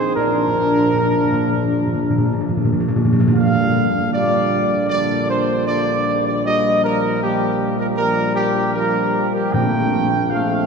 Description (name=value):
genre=classical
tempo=77 BPM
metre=4/4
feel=straight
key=Bb major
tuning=A4 = 440 Hz
part: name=mellow trumpet section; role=melody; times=0.0-10.7 s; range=G4 to G5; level=-20 LUFS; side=right 1 dB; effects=none
part: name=mellow French horn section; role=sustained chords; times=0.0-10.7 s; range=Bb3 to F4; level=-26 LUFS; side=left 6 dB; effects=none
part: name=warm trombone section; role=sustained chords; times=0.0-10.7 s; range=D3 to D4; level=-24 LUFS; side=right 1 dB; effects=none
part: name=mellow tuba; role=bass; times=0.2-10.7 s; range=Bb1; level=-24 LUFS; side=right 1 dB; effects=none
part: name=timpani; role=percussion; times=0.2-4.5, 9.5-10.7 s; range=Bb2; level=-20 LUFS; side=equal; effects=none
room=wet church reverb, RT60 3.8 s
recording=none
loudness=-16 LUFS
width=side -5 dB against mid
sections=0.0-3.4 A section; 3.4-10.7 B section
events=timpani fill 0.2-3.4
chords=0.2 Bb; 3.4 Bb6; 6.4 Ebadd9/Bb (rootless); 9.5 F/Bb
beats=| 0.17 0.96 1.75 2.55 | 3.36 4.13 4.90 5.68 | 6.45 7.22 7.98 8.75 | 9.54 10.31